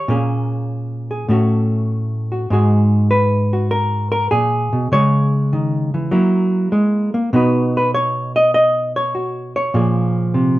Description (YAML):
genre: solo jazz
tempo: 99 BPM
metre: 4/4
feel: swing 69% on 8ths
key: unclear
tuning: A4 = 441 Hz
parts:
  - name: hollow-body jazz guitar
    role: solo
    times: 0.0-10.6 s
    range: Ab2 to D#5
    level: -15 LUFS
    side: equal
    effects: none
room: wet studio ambience, RT60 0.5 s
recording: heard from further back in the room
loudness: -15 LUFS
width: side -16 dB against mid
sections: 0.0-10.6 A section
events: none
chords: 0.1 Bbm7; 1.3 A6; 2.5 Abm7; 4.9 Dbmadd9; 6.1 Gb9; 7.3 B; 9.7 Bbm7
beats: | 0.08 0.69 1.29 1.89 | 2.50 3.10 3.70 4.31 | 4.91 5.51 6.12 6.72 | 7.32 7.93 8.53 9.13 | 9.74 10.34